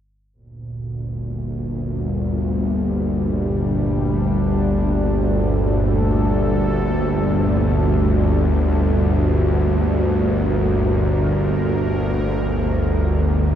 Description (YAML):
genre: dark ambient drone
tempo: free time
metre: none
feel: none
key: G minor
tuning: A4 = 440 Hz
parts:
  - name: sweeping resonant pad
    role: sustained chords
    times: 0.3-13.6 s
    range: Bb2 to Bb4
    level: -23 LUFS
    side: equal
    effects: chorus, shimmer reverb
  - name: bowed-like drone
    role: drone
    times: 0.9-13.6 s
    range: G1 to D2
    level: -18 LUFS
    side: equal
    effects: built-in reverb
room: wet huge ambient reverb, RT60 7.7 s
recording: dark, warm production, faint mains hum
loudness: -17 LUFS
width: side -10 dB against mid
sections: 0.3-13.6 A section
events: fade-out on analog synth pad 0.3-13.6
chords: 0.3 Gmadd9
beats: free time